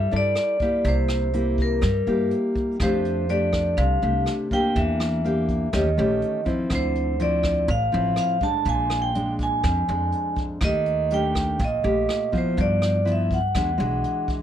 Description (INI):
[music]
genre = bossa nova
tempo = 123 BPM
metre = 4/4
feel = straight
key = unclear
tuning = A4 = 441 Hz
[part]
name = vibraphone with medium hard mallets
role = melody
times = 0.0-14.3 s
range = Bb4 to A5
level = -25 LUFS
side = right 1 dB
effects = none
[part]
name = nylon-string guitar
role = accompaniment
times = 0.0-14.4 s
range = F2 to D5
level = -25 LUFS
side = left 1 dB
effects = none
[part]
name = upright bass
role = bass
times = 0.0-14.0 s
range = A1 to G2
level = -26 LUFS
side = equal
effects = none
[part]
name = vintage brush drum kit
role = drums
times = 0.1-14.4 s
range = hi-hat, kick drum, rim click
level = -30 LUFS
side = equal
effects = none
[sound]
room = light reverb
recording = none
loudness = -20 LUFS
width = side -10 dB against mid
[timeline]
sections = 0.0-14.4 A section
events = none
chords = 0.0 C69 (rootless); 0.9 C7; 2.8 F69; 4.8 Em7b5; 5.7 Eb7#11; 6.7 Dm9; 8.7 Bb7; 10.6 Ebmaj9#11; 12.6 G6; 13.6 E9